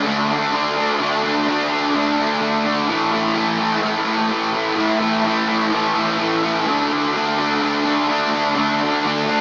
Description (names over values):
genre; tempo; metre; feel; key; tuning
rock; 127 BPM; 4/4; straight; unclear; A4 = 443 Hz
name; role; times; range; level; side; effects
fuzz guitar; solo; 0.0-9.4 s; A2 to D4; -16 LUFS; equal; distortion, lush chorus, diffuse ambient delay
room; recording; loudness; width
wet lush hall reverb, RT60 1.8 s; dreamy mix soaked in reverb, small speaker sound; -16 LUFS; side -38 dB against mid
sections
0.0-9.4 A section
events
none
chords
0.0 D5; 2.9 A5; 6.7 D5